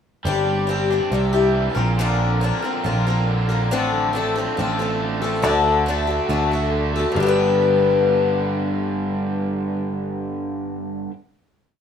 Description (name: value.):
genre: rock.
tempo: 139 BPM.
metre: 4/4.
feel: straight.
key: G mixolydian.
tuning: A4 = 440 Hz.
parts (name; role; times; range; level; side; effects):
overdriven electric guitar; riff; 0.2-11.1 s; G2 to G4; -24 LUFS; right 2 dB; none.
picked electric bass; bass; 0.2-11.1 s; G1 to D2; -23 LUFS; right 1 dB; none.
picked swing-style acoustic guitar; accompaniment; 0.3-11.2 s; G2 to B4; -21 LUFS; left 5 dB; none.
room: moderate studio reverb, RT60 0.6 s.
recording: rough home demo mix, small room ambience.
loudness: -18 LUFS.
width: side -8 dB against mid.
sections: 0.3-7.2 verse; 7.2-10.6 final chord.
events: none.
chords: 0.3 Gsus4; 1.1 Cadd9; 1.8 Bbadd9; 3.7 F6/A; 5.4 D; 7.2 G.